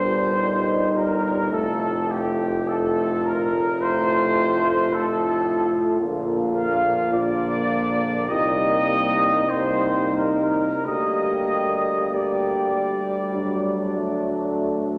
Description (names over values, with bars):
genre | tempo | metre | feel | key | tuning
classical, hymn-like piece for brass band | 42-55 BPM | 4/4 | rubato | G minor | A4 = 438 Hz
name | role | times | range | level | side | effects
warm trumpet section | melody | 0.0-14.6 s | G4 to F5 | -26 LUFS | equal | none
mellow French horn section | second line | 0.0-15.0 s | D4 to G4 | -28 LUFS | equal | none
clear euphonium | accompaniment | 0.0-15.0 s | G3 to Bb3 | -30 LUFS | equal | none
clear trombone | accompaniment | 0.0-15.0 s | A2 to G3 | -33 LUFS | equal | none
clear tuba | bass | 0.0-15.0 s | F1 to D2 | -31 LUFS | equal | none
room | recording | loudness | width
wet concert hall reverb, RT60 2.0 s | nothing above 10.6 kHz | -22 LUFS | mono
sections
0.0-15.0 A section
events
none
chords
0.0 Gm; 1.5 F; 6.0 Bb; 8.3 Cm7; 10.8 Gm/D; 13.3 D